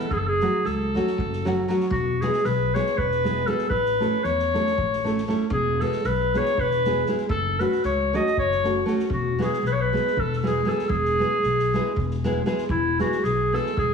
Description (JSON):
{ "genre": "balkan folk, Balkan wedding band", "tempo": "234 BPM (eighths)", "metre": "7/8", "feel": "straight", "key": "E major", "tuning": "A4 = 441 Hz", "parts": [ { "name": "warm clarinet", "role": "melody", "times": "0.0-13.9 s", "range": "E4 to D#5", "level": "-24 LUFS", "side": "equal", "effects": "none" }, { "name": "nylon-string guitar", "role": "accompaniment", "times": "0.0-13.7 s", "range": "F#3 to A4", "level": "-26 LUFS", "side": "right 1 dB", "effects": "none" }, { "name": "upright bass", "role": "bass", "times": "0.1-13.9 s", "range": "E1 to E2", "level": "-28 LUFS", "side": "left 2 dB", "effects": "none" }, { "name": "soft-mallet drum kit", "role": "percussion", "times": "0.1-13.9 s", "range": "kick drum, snare drum", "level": "-35 LUFS", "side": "left 1 dB", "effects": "none" } ], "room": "moderate recital hall reverb, RT60 1.4 s", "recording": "heavily compressed radio sound, multiband compression, studio ambience", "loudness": "-21 LUFS", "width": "side -6 dB against mid", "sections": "0.0-12.7 A section; 12.7-13.9 A section", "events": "none", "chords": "0.1 F#m; 1.9 E; 3.7 A; 5.5 E; 7.3 F#m; 9.1 E" }